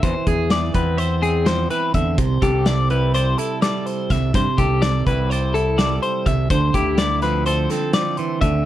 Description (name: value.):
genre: math rock and midwest emo.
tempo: 250 BPM (eighths).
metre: 9/8.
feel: straight.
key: C major.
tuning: A4 = 439 Hz.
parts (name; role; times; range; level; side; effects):
twangy electric guitar; accompaniment; 0.0-8.7 s; C3 to E5; -24 LUFS; right 7 dB; none.
twelve-string electric guitar; arpeggios; 0.0-8.7 s; G4 to E5; -22 LUFS; left 4 dB; none.
growling fingered electric bass; bass; 0.0-8.6 s; C2 to G2; -21 LUFS; equal; overdrive.
loose indie drum kit; drums; 0.0-8.5 s; hi-hat, kick drum, snare drum; -23 LUFS; equal; none.
room: small room ambience.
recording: none.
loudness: -17 LUFS.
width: side -13 dB against mid.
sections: 0.0-8.7 A section.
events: none.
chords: 0.0 E7b13; 2.2 C69; 6.5 Dm9.